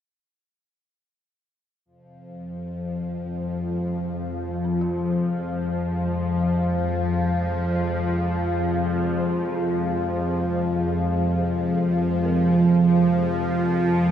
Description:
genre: dark ambient drone.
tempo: free time.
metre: none.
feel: none.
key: unclear.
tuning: A4 = 439 Hz.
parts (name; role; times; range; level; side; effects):
sweeping resonant pad; sustained chords; 1.9-14.1 s; C3 to F4; -35 LUFS; left 1 dB; chorus, shimmer reverb.
bowed-like drone; drone; 2.3-14.1 s; F2 to F3; -21 LUFS; equal; built-in reverb, phaser.
dark detuned synth bell; arpeggios; 4.6-14.1 s; F3 to Bb4; -43 LUFS; right 2 dB; none.
room: wet huge ambient reverb, RT60 8.1 s.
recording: none.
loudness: -21 LUFS.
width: side -9 dB against mid.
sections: 1.8-14.1 A section.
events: fade-in on analog synth pad 1.8-14.1.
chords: 1.8 Fm.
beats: free time.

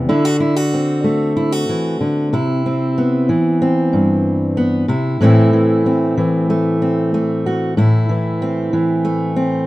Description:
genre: folk.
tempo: 94 BPM.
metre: 4/4.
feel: straight.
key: unclear.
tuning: A4 = 440 Hz.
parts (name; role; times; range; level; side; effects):
fingerpicked steel-string acoustic guitar; solo; 0.0-9.7 s; G2 to F#4; -14 LUFS; equal; none.
room: moderate studio ambience, RT60 0.5 s.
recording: rough home demo mix.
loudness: -14 LUFS.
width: side -17 dB against mid.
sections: 0.0-5.2 A section; 5.2-9.7 B section.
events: none.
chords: 0.1 D7; 2.3 Cmaj7; 5.2 Am.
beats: | 0.08 0.72 1.36 2.00 | 2.65 3.29 3.92 4.57 | 5.21 5.84 6.48 7.12 | 7.76 8.40 9.04.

